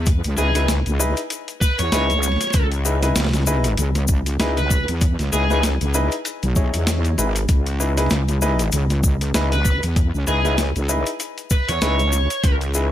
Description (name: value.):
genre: glitch hop.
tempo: 97 BPM.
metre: 4/4.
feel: swing 57% on 16ths.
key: C# minor.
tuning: A4 = 439 Hz.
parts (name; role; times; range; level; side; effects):
wobble bass; bass; 0.0-12.9 s; G#1 to E2; -20 LUFS; equal; chorus, overdrive.
boom bap sampler-style drum kit; drums; 0.1-12.7 s; hi-hat, snare drum; -26 LUFS; equal; small room ambience.
electronic kick drum; drums; 0.1-12.6 s; none; -18 LUFS; equal; small room ambience.
cabasa; percussion; 0.1-12.9 s; none; -28 LUFS; left 6 dB; none.
high-gain lead guitar; melody; 0.4-5.6, 9.5-12.5 s; G#4 to C#5; -25 LUFS; equal; distortion, ping-pong delay.
clear grand piano; stabs; 0.4-12.9 s; D#4 to C#5; -26 LUFS; left 1 dB; sidechain pumping, ping-pong delay.
room: little or no reverb.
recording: none.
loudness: -17 LUFS.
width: side -12 dB against mid.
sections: 0.0-12.9 A section.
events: none.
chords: 0.0 C#m7.